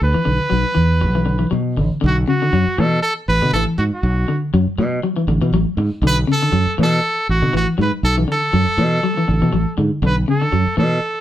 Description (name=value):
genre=afrobeat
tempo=120 BPM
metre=4/4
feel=swing 55% on 16ths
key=B dorian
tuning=A4 = 440 Hz
part: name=brilliant trumpet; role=melody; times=0.0-11.2 s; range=F#4 to B4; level=-20 LUFS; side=right 2 dB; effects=none
part: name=fingered electric bass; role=bass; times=0.0-11.0 s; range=A1 to B2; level=-18 LUFS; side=right 1 dB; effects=none
part: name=electric guitar at the edge of break-up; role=arpeggios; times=0.1-11.0 s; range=C#3 to F#3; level=-20 LUFS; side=left 2 dB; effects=warbly pitch drift
room=moderate studio reverb, RT60 0.6 s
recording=band playing live in one room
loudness=-15 LUFS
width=side -12 dB against mid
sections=0.0-2.0 A section; 2.0-11.2 B section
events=none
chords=0.0 Bm; 2.0 Bm7